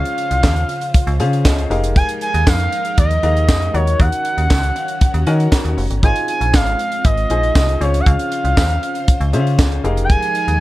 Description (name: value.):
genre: early-eighties boogie funk.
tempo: 118 BPM.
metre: 4/4.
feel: straight.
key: unclear.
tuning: A4 = 444 Hz.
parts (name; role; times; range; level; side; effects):
expressive portamento lead; melody; 0.0-10.6 s; Db5 to Ab5; -20 LUFS; right 1 dB; chorus.
warm concert grand piano; accompaniment; 0.0-10.6 s; Db4 to Bb5; -24 LUFS; left 3 dB; none.
string machine, full ensemble; sustained chords; 0.0-10.6 s; Db3 to G5; -28 LUFS; equal; ensemble chorus.
metallic FM bass; bass; 0.0-10.6 s; F1 to Eb3; -17 LUFS; equal; none.
tight funk drum kit; drums; 0.1-10.6 s; handclaps, hi-hat, kick drum, snare drum; -16 LUFS; equal; none.
tambourine; percussion; 0.4-9.7 s; none; -32 LUFS; right 7 dB; none.
room: light reverb.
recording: dark, warm production.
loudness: -14 LUFS.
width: side -17 dB against mid.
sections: 0.0-10.6 A section.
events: grand piano fill 0.9-2.0, 4.5-6.0.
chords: 0.0 Dbmaj7; 1.7 Fm11; 3.7 Ebm7; 6.0 Ab6; 7.8 Dbmaj7; 9.8 Fm11.